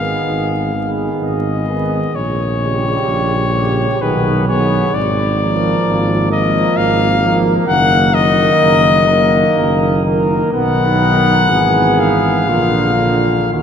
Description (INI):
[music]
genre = classical, hymn-like piece for brass band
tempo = 54-67 BPM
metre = 3/4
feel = rubato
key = unclear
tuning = A4 = 440 Hz
[part]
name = warm cornet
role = melody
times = 0.0-13.6 s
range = Cb5 to Gb5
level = -16 LUFS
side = left 4 dB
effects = none
[part]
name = mellow flugelhorn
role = second line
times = 0.0-13.6 s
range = F4 to Bb4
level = -21 LUFS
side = right 6 dB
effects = none
[part]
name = clear trombone section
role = accompaniment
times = 0.0-13.6 s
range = G3 to Cb4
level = -23 LUFS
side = left 1 dB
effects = none
[part]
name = mellow euphonium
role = accompaniment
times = 0.0-13.6 s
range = Db3 to F3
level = -20 LUFS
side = right 2 dB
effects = none
[part]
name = dark tuba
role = bass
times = 0.0-13.6 s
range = Gb1 to Eb2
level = -17 LUFS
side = equal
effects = none
[sound]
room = wet cathedral reverb, RT60 5.8 s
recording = vinyl crackle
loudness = -12 LUFS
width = side -8 dB against mid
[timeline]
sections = 0.0-13.6 A section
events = none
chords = 0.0 Abm; 2.1 Gdim/Bb; 4.0 Abm/Cb; 5.0 Bb7/Ab; 7.7 Ebm/Gb; 10.5 Bmaj7; 11.5 E/G#; 12.5 Bb